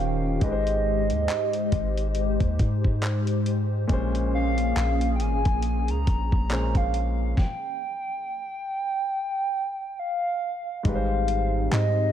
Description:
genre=contemporary R&B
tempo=69 BPM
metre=4/4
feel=swing 58% on 16ths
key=Ab major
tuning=A4 = 440 Hz
part: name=hollow clarinet-like synth lead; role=melody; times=0.0-12.1 s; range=Eb5 to Bb5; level=-28 LUFS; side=right 1 dB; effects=chorus, phaser
part: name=clear grand piano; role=accompaniment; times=0.0-12.1 s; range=Ab2 to C5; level=-32 LUFS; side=left 2 dB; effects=none
part: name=hollow soft pad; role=sustained chords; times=0.0-12.1 s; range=Eb3 to C5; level=-31 LUFS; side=left 2 dB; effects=ensemble chorus, sidechain pumping
part: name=long sustained 808-style bass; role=bass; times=0.0-12.1 s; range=Eb1 to Ab2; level=-26 LUFS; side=equal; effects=none
part: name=dusty soul sampler-style drum kit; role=drums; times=0.4-12.0 s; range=handclaps, hi-hat, kick drum, snare drum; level=-26 LUFS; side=equal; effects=none
room=digital ambience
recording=none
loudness=-23 LUFS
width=side -10 dB against mid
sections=0.0-10.9 A section; 10.9-12.1 B section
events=stop 7.4-10.9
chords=0.4 Abmaj7; 3.9 Bbm9; 7.4 N.C.; 10.9 Abmaj7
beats=| 0.42 1.29 2.16 3.02 | 3.90 4.76 5.63 6.50 | 7.37 8.24 9.11 9.98 | 10.85 11.72

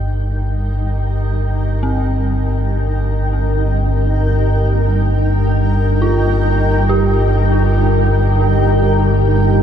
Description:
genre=dark ambient drone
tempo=free time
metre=none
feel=none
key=unclear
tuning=A4 = 439 Hz
part: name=granular cloud pad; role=sustained chords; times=0.0-9.6 s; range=G3 to G5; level=-18 LUFS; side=equal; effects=built-in reverb, lush chorus, shimmer reverb
part: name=deep rumbling drone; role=drone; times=0.0-9.6 s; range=G1 to G2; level=-15 LUFS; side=equal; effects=built-in reverb, lush chorus
part: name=dark detuned synth bell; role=arpeggios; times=1.8-9.6 s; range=C4 to G4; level=-24 LUFS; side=right 1 dB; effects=chorus, tape echo, shimmer reverb
room=moderate huge ambient reverb, RT60 8.4 s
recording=dreamy mix soaked in reverb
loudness=-13 LUFS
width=side -9 dB against mid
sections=0.0-9.6 A section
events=fade-in on ambient pad 0.0-9.6; fade-in on synth bell 0.0-9.6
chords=0.0 Eb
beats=free time

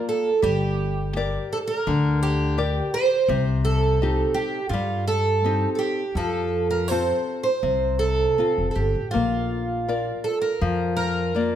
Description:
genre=fado-style ballad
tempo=83 BPM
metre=4/4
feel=rubato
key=Bb major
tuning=A4 = 440 Hz
part: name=fingerpicked twelve-string acoustic guitar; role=melody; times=0.0-11.6 s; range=F4 to C5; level=-23 LUFS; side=right 4 dB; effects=none
part: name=nylon-string guitar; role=accompaniment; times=0.0-11.6 s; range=C3 to D5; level=-27 LUFS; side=left 5 dB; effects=none
part: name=upright bass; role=bass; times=0.4-11.6 s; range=F1 to G2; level=-26 LUFS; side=equal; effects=none
room=moderate recital hall reverb, RT60 1.6 s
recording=none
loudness=-20 LUFS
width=side -10 dB against mid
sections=0.0-11.6 A section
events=none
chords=0.4 Gm; 3.3 Cm; 6.2 F; 9.1 Bb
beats=| 0.42 1.14 1.86 2.58 | 3.29 4.00 4.72 5.43 | 6.16 6.89 7.63 8.39 | 9.14 9.88 10.62 11.34

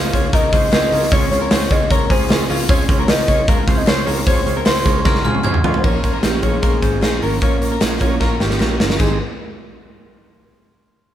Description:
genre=jangly indie pop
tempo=152 BPM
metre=4/4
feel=straight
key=unclear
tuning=A4 = 439 Hz
part: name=soft octave-layered synth lead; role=melody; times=0.0-9.2 s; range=G4 to F5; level=-22 LUFS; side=left 2 dB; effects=chorus, tremolo
part: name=fingerpicked plugged-in steel-string acoustic guitar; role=accompaniment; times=0.0-9.2 s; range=Ab2 to F4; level=-25 LUFS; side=right 5 dB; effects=none
part: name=overdriven combo organ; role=accompaniment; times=0.0-9.2 s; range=C4 to C5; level=-27 LUFS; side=right 5 dB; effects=none
part: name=clean electric guitar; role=arpeggios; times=0.0-9.2 s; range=Eb4 to Db5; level=-25 LUFS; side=left 5 dB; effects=none
part: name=vintage muted picked electric bass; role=bass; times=0.0-9.2 s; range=G1 to Db2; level=-24 LUFS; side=equal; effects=none
part: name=big rock drum kit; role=drums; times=0.1-9.1 s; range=crash cymbal, hi-hat, kick drum, snare drum, toms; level=-16 LUFS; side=equal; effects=none
part: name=group handclap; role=percussion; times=0.5-9.2 s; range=none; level=-36 LUFS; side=left 5 dB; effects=none
part: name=glockenspiel with brass mallets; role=second line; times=4.7-5.8 s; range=C6 to Ab6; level=-26 LUFS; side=right 1 dB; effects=none
room=light reverb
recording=band playing live in one room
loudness=-14 LUFS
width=side -11 dB against mid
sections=0.0-5.8 A section; 5.8-9.0 B section; 9.0-10.6 C section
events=drum fill 5.1-5.8, 8.2-9.0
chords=0.0 Dbmaj7; 5.8 Bbm; 9.0 Abmaj7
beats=0.33 0.73 | 1.12 1.51 1.91 2.30 | 2.69 3.09 3.48 3.88 | 4.27 4.66 5.06 5.45 | 5.84 6.24 6.63 7.03 | 7.42 7.82 8.21 8.61 | 9.00

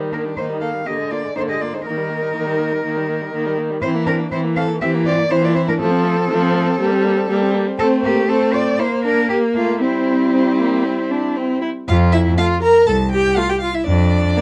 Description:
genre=quick classical-period movement for string quartet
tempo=121 BPM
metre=4/4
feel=straight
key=F major from 3.8 s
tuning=A4 = 441 Hz
part: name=rich violin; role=second line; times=0.0-14.4 s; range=G3 to E4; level=-27 LUFS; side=equal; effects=none
part: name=rich viola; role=accompaniment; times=0.0-14.4 s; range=D3 to Bb4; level=-21 LUFS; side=equal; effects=none
part: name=rich violin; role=melody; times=0.1-14.4 s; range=G3 to Bb5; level=-27 LUFS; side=equal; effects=none
part: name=rich cello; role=bass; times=0.1-14.3 s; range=C2 to F5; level=-22 LUFS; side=equal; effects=none
room=light reverb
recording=dark, warm production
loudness=-18 LUFS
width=mono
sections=0.0-11.9 A section; 11.9-14.4 B section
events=none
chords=0.0 Eb; 0.9 Bb7/D; 1.9 Eb; 3.8 C7/E; 5.8 F; 6.8 C5/G; 7.8 Bbmaj13/A; 8.8 Gm7/Bb (rootless); 9.8 C/G; 11.9 F; 13.9 Bb/F (rootless)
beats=0.37 0.87 1.36 | 1.86 2.35 2.84 3.33 | 3.83 4.32 4.81 5.31 | 5.80 6.30 6.80 7.29 | 7.79 8.29 8.79 9.30 | 9.81 10.34 10.86 11.37 | 11.88 12.38 12.88 13.37 | 13.87 14.37

